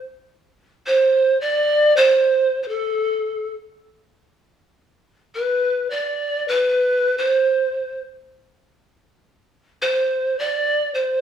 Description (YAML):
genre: andean folk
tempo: 108 BPM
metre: 4/4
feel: straight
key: unclear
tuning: A4 = 440 Hz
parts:
  - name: breathy pan flute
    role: solo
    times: 0.0-11.2 s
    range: A4 to D5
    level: -17 LUFS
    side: right 1 dB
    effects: none
room: moderate stone room reverb, RT60 1.1 s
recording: band playing live in one room, studio ambience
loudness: -17 LUFS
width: side -8 dB against mid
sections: 0.6-11.2 A section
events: none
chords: none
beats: 0.03 | 0.59 1.16 1.72 2.28 | 2.84 3.40 3.96 4.52 | 5.08 5.63 6.19 6.75 | 7.31 7.86 8.42 8.97 | 9.53 10.08 10.64 11.19